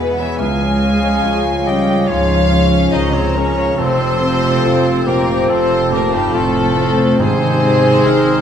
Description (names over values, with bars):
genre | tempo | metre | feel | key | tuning
cinematic | 71 BPM | 4/4 | rubato | unclear | A4 = 439 Hz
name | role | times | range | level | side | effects
warm studio violin section | melody | 0.0-8.4 s | Ab3 to Db4 | -22 LUFS | left 4 dB | none
dark cor anglais | second line | 0.0-8.4 s | G3 to Ab4 | -26 LUFS | right 2 dB | none
silver concert flute | second line | 0.0-8.4 s | F5 to F6 | -25 LUFS | left 2 dB | none
warm clarinet | second line | 0.0-8.4 s | Eb4 to F5 | -25 LUFS | left 1 dB | none
warm studio violin section | second line | 0.0-8.4 s | G4 to Ab5 | -20 LUFS | left 2 dB | none
dark studio viola section | accompaniment | 0.0-8.4 s | Eb3 to C4 | -25 LUFS | right 2 dB | none
warm grand piano | accompaniment | 0.0-8.4 s | Db2 to Db5 | -22 LUFS | equal | none
mellow French horn section | sustained chords | 0.0-8.4 s | F3 to F4 | -23 LUFS | equal | none
concert harp | arpeggios | 0.0-8.4 s | F2 to A5 | -28 LUFS | left 5 dB | none
rich studio double bass section | bass | 0.0-8.4 s | F1 to E2 | -22 LUFS | right 3 dB | none
warm studio cello section | bass | 0.0-8.4 s | G2 to Ab3 | -19 LUFS | right 2 dB | none
timpani | percussion | 7.2-8.4 s | Ab2 | -24 LUFS | equal | none
room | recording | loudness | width
wet scoring stage reverb, RT60 1.7 s | minimal, uncompressed stereo recording | -12 LUFS | side -8 dB against mid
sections
0.0-8.4 A section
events
none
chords
0.4 Db; 3.8 F; 7.2 Ab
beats
| 0.41 1.25 2.09 2.93 | 3.79 4.65 5.51 6.35 | 7.20 8.05